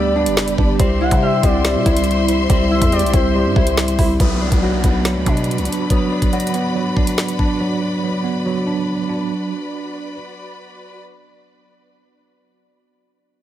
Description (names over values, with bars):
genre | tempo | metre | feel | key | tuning
hip hop, drill | 141 BPM | 4/4 | half-time | B phrygian | A4 = 441 Hz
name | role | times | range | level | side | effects
gliding portamento lead | second line | 0.0-3.7 s | C5 to F#5 | -23 LUFS | equal | chorus, phaser, digital delay
mellow tine electric piano | accompaniment | 0.0-10.2 s | F#3 to E4 | -20 LUFS | right 3 dB | medium stereo tremolo
warm symphonic string section | sustained chords | 0.0-11.0 s | F#4 to C6 | -26 LUFS | left 2 dB | none
concert harp | arpeggios | 0.0-9.8 s | B3 to G4 | -24 LUFS | left 5 dB | digital delay
growling 808-style bass | bass | 0.0-5.7 s | F#1 to C3 | -20 LUFS | equal | none
drill drum kit | drums | 0.3-7.5 s | hi-hat, kick drum, snare drum | -18 LUFS | equal | none
downlifter | sound effects | 4.2-7.6 s | none | -30 LUFS | left 1 dB | none
room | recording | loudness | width
digital ambience | none | -15 LUFS | side -12 dB against mid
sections
0.0-4.2 A section; 4.2-11.0 B section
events
none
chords
0.0 G; 0.8 C; 4.2 Bm